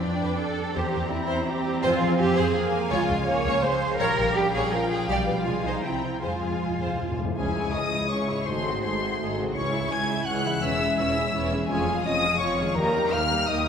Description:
classical, dramatic, fast romantic movement for symphony orchestra; 166 BPM; 3/4; rubato; F minor, C# minor from 7.4 s; A4 = 440 Hz
warm symphonic violin section; melody; 0.0-13.7 s; G5 to G#6; -30 LUFS; left 3 dB
rich symphonic violin section; second line; 0.0-13.7 s; C#4 to G5; -31 LUFS; left 1 dB
warm symphonic viola section; accompaniment; 0.0-13.7 s; Eb3 to F4; -31 LUFS; right 2 dB
concert harp; arpeggios; 0.0-13.7 s; G#2 to A4; -32 LUFS; left 3 dB
rich symphonic double bass section; bass; 0.0-13.7 s; E1 to F2; -33 LUFS; right 3 dB
warm symphonic cello section; bass; 0.0-13.7 s; C#2 to Db5; -29 LUFS; right 3 dB
timpani; percussion; 1.8-2.3, 6.2-9.0, 12.8-13.3 s; F2 to Eb3; -37 LUFS; left 2 dB
warm clarinet; second line; 7.4-13.7 s; Ab4 to G#5; -30 LUFS; left 1 dB
mellow French horn section; sustained chords; 7.4-12.9 s; G3 to F#4; -32 LUFS; left 1 dB
wet concert hall reverb, RT60 2.2 s; recorded in a church or concert hall; -22 LUFS; side -7 dB against mid
0.0-7.4 A section; 7.4-13.7 B section
timpani fill 6.2-7.4
0.0 G7/F; 0.8 C7/E; 1.8 Fm; 2.9 Db; 4.0 Gm7b5/Bb; 5.1 G7/B; 5.5 Fm/C; 5.8 C7; 6.2 Fm; 7.4 C#m; 8.5 G#7b9; 9.6 C#m; 10.6 C#m/E; 11.7 Db/F; 12.8 Eb
0.03 0.39 | 0.75 1.12 1.48 | 1.84 2.20 2.55 | 2.91 3.27 3.63 | 3.99 4.36 4.72 | 5.09 5.46 5.83 | 6.22 6.61 7.00 | 7.38 7.74 8.10 | 8.47 8.83 9.19 | 9.56 9.91 10.27 | 10.62 10.98 11.34 | 11.69 12.05 12.41 | 12.77 13.13 13.49

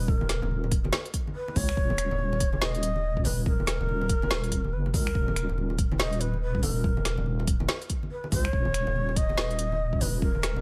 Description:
deep dubstep; 142 BPM; 4/4; swing 61% on 16ths, half-time; A4 = 440 Hz
breathy long shakuhachi; melody; 0.0-10.6 s; Bb4 to Eb5; -36 LUFS; equal; dub echo
deep soft wobble bass; bass; 0.0-10.6 s; Eb1 to Db2; -31 LUFS; equal; chorus
electronic kick drum; drums; 0.1-10.3 s; -30 LUFS; equal; small room ambience
congas; percussion; 0.2-10.6 s; -37 LUFS; equal
deep house drum kit; drums; 0.3-10.5 s; finger snaps, hi-hat, snare drum; -33 LUFS; equal; small room ambience
small room ambience; -27 LUFS; mono
0.0-10.6 A section
0.0 Eb5
| 0.08 0.50 0.93 1.35 | 1.77 2.19 2.62 3.04 | 3.46 3.88 4.31 4.73 | 5.15 5.57 6.00 6.42 | 6.84 7.26 7.69 8.11 | 8.53 8.96 9.38 9.80 | 10.22

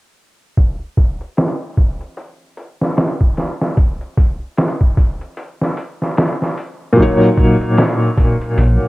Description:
trip hop; 75 BPM; 4/4; swing 59% on 16ths; A4 = 440 Hz
trip hop sampler-style drum kit; drums; 0.6-8.8 s; hi-hat, kick drum, snare drum; -15 LUFS; equal; low-pass filter on kick, cassette tape, low-pass filter on hats, low-pass filter on snare, low-pass filter on room
felt-muted upright piano; accompaniment; 6.9-8.9 s; Bb2 to Db5; -12 LUFS; equal; tremolo, cassette tape, tape echo
dark detuned saw bass; bass; 8.6-8.8 s; Bb1; -11 LUFS; equal
light reverb, digital ambience; home recording on cassette; -14 LUFS; side -20 dB against mid
0.6-8.9 A section
0.6 N.C.; 7.0 Ebm7
| 0.58 1.38 2.18 2.98 | 3.78 4.58 5.38 6.18 | 6.98 7.78 8.58

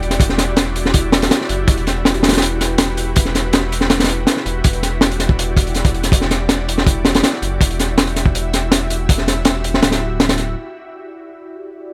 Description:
drum and bass, jungle; 162 BPM; 4/4; straight; E minor; A4 = 440 Hz
ethereal airy pad; sustained chords; 0.0-11.9 s; E4 to E5; -27 LUFS; equal; ensemble chorus, built-in reverb
saturated sub bass; bass; 0.0-10.6 s; D1 to F#1; -24 LUFS; equal
crunchy breakbeat drum kit; drums; 0.0-10.5 s; hi-hat, kick drum, snare drum; -17 LUFS; equal
studio reverb; -16 LUFS; mono
0.0-10.6 A section; 10.6-11.9 B section
drop 0.0-10.6; filter sweep on ambient pad 10.6-11.9
0.0 Em9
| 0.20 0.57 0.94 1.31 | 1.68 2.05 2.42 2.79 | 3.16 3.53 3.90 4.27 | 4.64 5.01 5.38 5.75 | 6.12 6.49 6.86 7.24 | 7.61 7.97 8.35 8.72 | 9.09 9.46 9.83 10.20 | 10.57 10.94 11.31 11.68

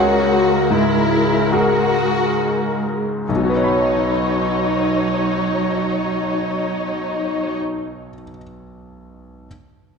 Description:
cinematic, emotional film score for orchestra; 65-78 BPM; 4/4; rubato; B major; A4 = 442 Hz
rich studio violin section; second line; 0.0-7.6 s; D#4 to F#4; -21 LUFS; left 2 dB
bright grand piano; accompaniment; 0.0-9.5 s; B1 to B5; -23 LUFS; equal
warm studio viola section; accompaniment; 0.0-7.6 s; F#3 to C#5; -22 LUFS; right 2 dB
concert harp; arpeggios; 0.0-8.4 s; B2 to B5; -24 LUFS; left 4 dB
wet scoring stage reverb, RT60 1.9 s; dark, warm production; -16 LUFS; side -5 dB against mid
0.0-3.3 A section; 3.3-6.8 B section
slowing down 0.0-3.3
0.0 F#add9/C#; 3.3 Badd9
0.72 1.53 2.39 | 3.29 4.17 5.05 5.93

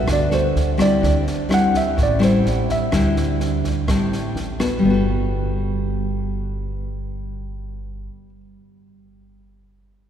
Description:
bossa nova; 126 BPM; 4/4; straight; G major; A4 = 440 Hz
mellow tine electric piano; melody; 0.0-3.1 s; C5 to F#5; -23 LUFS; right 1 dB; medium stereo tremolo
nylon-string guitar; accompaniment; 0.0-8.4 s; A2 to A4; -20 LUFS; left 1 dB
upright bass; bass; 0.0-8.1 s; G1 to D2; -24 LUFS; right 1 dB
compact cocktail drum kit; drums; 0.1-4.7 s; kick drum, rim click, snare drum; -26 LUFS; right 1 dB
wet cathedral reverb, RT60 4.8 s; recorded in a church or concert hall; -17 LUFS; side -9 dB against mid
0.0-4.8 A section; 4.8-8.6 B section
tine electric piano solo 0.0-4.8
0.0 Gmaj9; 1.0 D9sus4; 4.8 Gmaj9
0.07 0.55 | 1.02 1.50 1.97 2.45 | 2.93 3.40 3.88 4.35 | 4.83 5.31 5.78 6.26 | 6.74 7.21 7.69 8.17

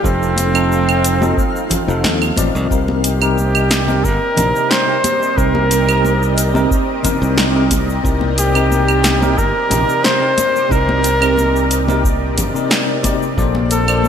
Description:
sunset chillout; 90 BPM; 4/4; straight; C dorian; A4 = 445 Hz
clear flugelhorn; melody; 0.0-14.1 s; C4 to C5; -18 LUFS; equal; digital delay
bell-like tine electric piano; accompaniment; 0.0-14.1 s; C3 to D5; -20 LUFS; moving between left 6 dB and right 6 dB; medium stereo tremolo, auto-pan, digital delay
lush unison pad; sustained chords; 0.0-14.1 s; Bb3 to A5; -23 LUFS; right 1 dB; chorus, phaser
modern bright fingered electric bass; bass; 0.0-14.1 s; F1 to Eb2; -18 LUFS; equal
electronic kick drum; drums; 0.0-13.5 s; -20 LUFS; equal; overdrive
twinkling granular texture; texture; 0.0-2.7, 13.6-14.1 s; F5 to F6; -33 LUFS; equal; built-in reverb
deep house drum kit; drums; 0.1-14.1 s; claves, hi-hat, shaker, snare drum; -19 LUFS; right 1 dB; overdrive, gated reverb
congas; percussion; 0.4-14.1 s; -26 LUFS; left 3 dB
wet lush hall reverb, RT60 2.4 s; bright 1980s-style digital production; -13 LUFS; side -8 dB against mid
0.0-2.7 A section; 2.7-14.1 B section
filter sweep on tine electric piano 0.0-2.7
0.0 F7; 2.7 Cm7; 13.4 Bbmaj9
| 0.04 0.71 1.38 2.04 | 2.71 3.38 4.04 4.71 | 5.38 6.04 6.71 7.38 | 8.04 8.71 9.38 10.04 | 10.71 11.38 12.04 12.71 | 13.38 14.04

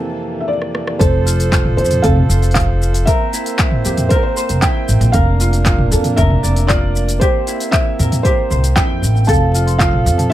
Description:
folktronica; 116 BPM; 4/4; straight; F major; A4 = 438 Hz
hand-pumped harmonium; sustained chords; 0.0-10.3 s; F2 to C5; -24 LUFS; right 4 dB
ukulele; arpeggios; 0.0-10.3 s; C4 to D5; -22 LUFS; left 1 dB; ping-pong delay
felt-muted upright piano; melody; 0.4-10.3 s; Bb4 to A5; -21 LUFS; right 1 dB; ping-pong delay
organic electronic drum kit; drums; 0.6-10.3 s; handclaps, hi-hat, rim click, shaker, toms; -20 LUFS; equal; overdrive, studio ambience
upright bass; bass; 1.0-10.3 s; F1 to F2; -15 LUFS; equal
electronic kick drum; drums; 1.0-9.9 s; -16 LUFS; equal; overdrive, studio ambience
marimba with medium mallets; second line; 9.3-10.3 s; F5 to C6; -22 LUFS; right 2 dB; tape echo
backwards swelling texture; texture; 9.3-10.3 s; G4 to G5; -38 LUFS; right 2 dB
little or no reverb; -12 LUFS; side -13 dB against mid
0.0-1.0 A section; 1.0-10.3 B section
break 0.0-1.0; filter sweep on ukulele 0.0-1.0; drum fill 0.6-1.0
0.0 C7/F; 1.0 F; 3.1 C7; 5.1 Bbmaj7/F; 7.2 C7; 9.3 Fmaj7
0.49 | 1.00 1.52 2.04 2.56 | 3.07 3.59 4.11 4.62 | 5.14 5.66 6.18 6.69 | 7.21 7.73 8.25 8.76 | 9.28 9.80 10.31

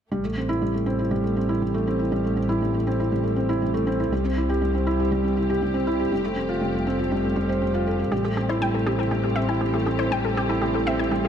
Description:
electronica; 120 BPM; 4/4; straight; A minor; A4 = 443 Hz
dark studio string section; sustained chords; 0.1-11.3 s; E3 to G4; -34 LUFS; left 1 dB
felt-muted upright piano; riff; 0.1-11.3 s; G3 to C5; -23 LUFS; right 1 dB; ping-pong delay
dark studio double bass section; bass; 0.1-11.3 s; F1 to C2; -28 LUFS; left 1 dB
analog pluck; arpeggios; 8.1-11.3 s; G4 to G5; -28 LUFS; left 2 dB; chorus, ping-pong delay
moderate concert hall reverb, RT60 2.2 s; -21 LUFS; side -8 dB against mid
0.1-11.3 A section
fade-in on string section 0.1-11.3
0.1 Am7; 4.1 C; 6.1 Fadd9; 8.1 Am7
| 0.12 0.62 1.12 1.62 | 2.12 2.62 3.12 3.62 | 4.12 4.62 5.12 5.62 | 6.12 6.62 7.12 7.62 | 8.12 8.62 9.12 9.62 | 10.12 10.62 11.12

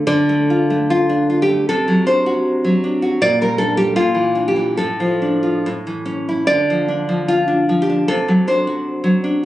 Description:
romantic piece for solo classical guitar; 70-80 BPM; 2/4; rubato; D minor; A4 = 440 Hz
nylon-string guitar; solo; 0.0-9.4 s; A2 to D5; -15 LUFS; equal
little or no reverb; recorded on a phone in the room, club reverb, nothing above 10.7 kHz; -15 LUFS; side -14 dB against mid
0.1-9.4 A section
0.1 Dm; 1.7 D7/C; 3.2 Gm/Bb; 4.0 Bb6; 4.8 Dm/A; 5.7 A; 6.5 Dm; 8.1 D7/C
| 0.07 0.90 | 1.68 2.45 | 3.21 3.98 | 4.80 5.67 | 6.51 7.31 | 8.10 8.86

